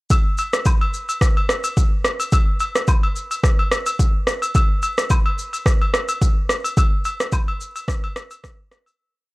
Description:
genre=afrobeats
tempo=108 BPM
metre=4/4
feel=swing 55% on 16ths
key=none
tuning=none
part: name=afro-pop drum kit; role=drums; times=0.1-9.0 s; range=kick drum, rim click, shaker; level=-17 LUFS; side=equal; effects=overdrive
part: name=agogo bells and woodblock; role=percussion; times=0.1-9.0 s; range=none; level=-25 LUFS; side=left 1 dB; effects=none
room=little or no reverb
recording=dry, gritty hardware recording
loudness=-17 LUFS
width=side -22 dB against mid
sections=0.1-9.0 verse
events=fade-out 6.8-9.0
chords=none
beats=| 0.10 0.66 1.21 1.77 | 2.33 2.88 3.44 3.99 | 4.55 5.10 5.66 6.21 | 6.77 7.33 7.88 8.44

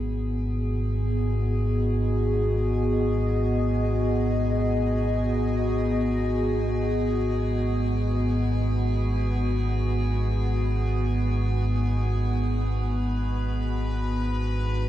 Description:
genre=dark ambient drone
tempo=free time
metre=none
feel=none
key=G# minor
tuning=A4 = 440 Hz
part: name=dark analog pad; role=sustained chords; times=0.0-14.9 s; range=G#2 to D#5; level=-27 LUFS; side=left 1 dB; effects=chorus, phaser, shimmer reverb
part: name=deep rumbling drone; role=drone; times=0.0-14.9 s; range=G#1 to G#2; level=-25 LUFS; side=equal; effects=built-in reverb, phaser
part: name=metallic inharmonic drone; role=texture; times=0.0-14.9 s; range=G#4 to B4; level=-38 LUFS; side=equal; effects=chorus, built-in reverb, shimmer reverb
room=wet cathedral reverb, RT60 5.9 s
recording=none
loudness=-23 LUFS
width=side -12 dB against mid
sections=0.0-14.9 A section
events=fade-in on synth drone 0.0-14.9; fade-out on analog synth pad 0.0-14.9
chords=0.0 G#m7; 12.4 Bm/G#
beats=free time

